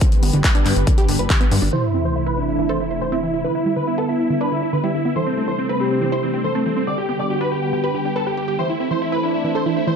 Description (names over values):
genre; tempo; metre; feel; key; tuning
uplifting trance; 140 BPM; 4/4; straight; unclear; A4 = 440 Hz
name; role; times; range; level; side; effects
analog string pad; sustained chords; 0.0-10.0 s; C3 to C5; -25 LUFS; left 1 dB; ensemble chorus, sidechain pumping
wide unison pluck; arpeggios; 0.0-9.9 s; D3 to C5; -25 LUFS; right 2 dB; cassette tape, sidechain pumping, ping-pong delay
electronic kick drum; drums; 0.0-1.4 s; none; -16 LUFS; equal; none
punchy analog drum machine; drums; 0.0-1.6 s; handclaps, hi-hat; -24 LUFS; left 1 dB; low-pass filter on hats, low-pass filter on snare, low-pass filter on room
plucky analog bass; bass; 0.2-1.7 s; G1 to G2; -19 LUFS; equal; sidechain pumping
big supersaw lead; melody; 1.7-10.0 s; C4 to D5; -23 LUFS; right 1 dB; sidechain pumping, low-pass filter, ping-pong delay
warm baby grand piano; second line; 1.7-10.0 s; C5 to D6; -32 LUFS; left 3 dB; sidechain pumping, low-pass filter, ping-pong delay
warm velvety synth lead; second line; 1.7-10.0 s; B3 to A4; -26 LUFS; right 2 dB; chorus, digital delay
sub drop; sound effects; 1.7-3.4 s; none; -26 LUFS; equal; none
room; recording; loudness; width
moderate lush hall reverb, RT60 1.6 s; dark, warm production; -17 LUFS; side -6 dB against mid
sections
0.0-1.7 A section; 1.7-10.0 B section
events
impact 1.7-3.4; filter sweep on supersaw synth 1.7-10.0; filter sweep on grand piano 1.7-10.0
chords
0.0 G; 1.7 Am; 3.4 Em7; 5.2 C6; 6.9 G; 8.6 Am